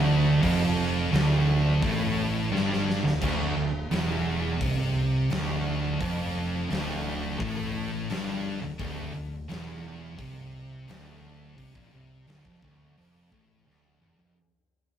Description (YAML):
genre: stoner and doom metal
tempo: 86 BPM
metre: 4/4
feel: straight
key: D minor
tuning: A4 = 440 Hz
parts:
  - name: scooped high-gain guitar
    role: riff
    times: 0.0-14.4 s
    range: D2 to C3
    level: -35 LUFS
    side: left 3 dB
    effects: distortion
  - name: thick fuzz guitar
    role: riff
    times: 0.0-14.4 s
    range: D2 to C3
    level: -31 LUFS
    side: left 3 dB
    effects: distortion
  - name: thick fuzz guitar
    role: riff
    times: 0.0-14.3 s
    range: D2 to C3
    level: -28 LUFS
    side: right 4 dB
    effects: distortion
  - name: fingered electric bass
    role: bass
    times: 0.0-14.3 s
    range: D1 to C2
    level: -35 LUFS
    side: left 1 dB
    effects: overdrive
  - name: big rock drum kit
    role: drums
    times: 0.4-14.4 s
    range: crash cymbal, hi-hat, kick drum, snare drum, toms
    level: -33 LUFS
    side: left 1 dB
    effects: none
room: moderate stone room reverb, RT60 1.1 s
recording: rough rehearsal-room recording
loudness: -24 LUFS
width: side -9 dB against mid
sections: 0.0-14.4 A section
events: fade-out 0.0-14.4; drum fill 2.5-3.2, 13.7-14.4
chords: 0.0 Dm